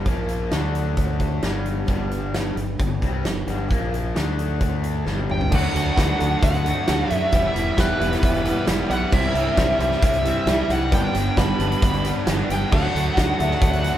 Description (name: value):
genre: classic rock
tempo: 133 BPM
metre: 4/4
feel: straight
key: unclear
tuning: A4 = 440 Hz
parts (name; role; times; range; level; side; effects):
- picked steel-string acoustic guitar; accompaniment; 0.0-14.0 s; G2 to F5; -32 LUFS; right 4 dB; none
- distorted electric guitar; riff; 0.0-14.0 s; E2 to G4; -27 LUFS; left 4 dB; distortion
- growling fingered electric bass; bass; 0.0-13.9 s; E1 to F#2; -25 LUFS; equal; overdrive
- big rock drum kit; drums; 0.1-13.9 s; crash cymbal, hi-hat, kick drum, snare drum, toms; -23 LUFS; equal; none
- dark smooth lead guitar; melody; 5.3-14.0 s; B4 to B5; -25 LUFS; equal; wah, overdrive
- warm upright piano; accompaniment; 5.5-14.0 s; D4 to G5; -31 LUFS; left 2 dB; none
- sludgy distorted guitar; riff; 5.5-14.0 s; G2 to E4; -29 LUFS; right 4 dB; overdrive
room: moderate small room reverb, RT60 0.5 s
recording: band playing live in one room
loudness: -19 LUFS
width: side -12 dB against mid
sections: 0.0-5.5 A section; 5.5-14.0 B section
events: drum fill 5.1-5.5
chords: 0.1 Bb5; 0.5 D5; 1.4 G; 3.7 Bb5; 4.2 D5; 5.1 G; 5.5 D; 7.3 Em; 9.1 Cadd9; 10.9 G; 12.7 D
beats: | 0.06 0.52 0.97 1.43 | 1.88 2.34 2.79 3.25 | 3.70 4.16 4.61 5.07 | 5.52 5.97 6.42 6.88 | 7.33 7.78 8.23 8.68 | 9.13 9.58 10.03 10.47 | 10.93 11.37 11.82 12.27 | 12.72 13.17 13.62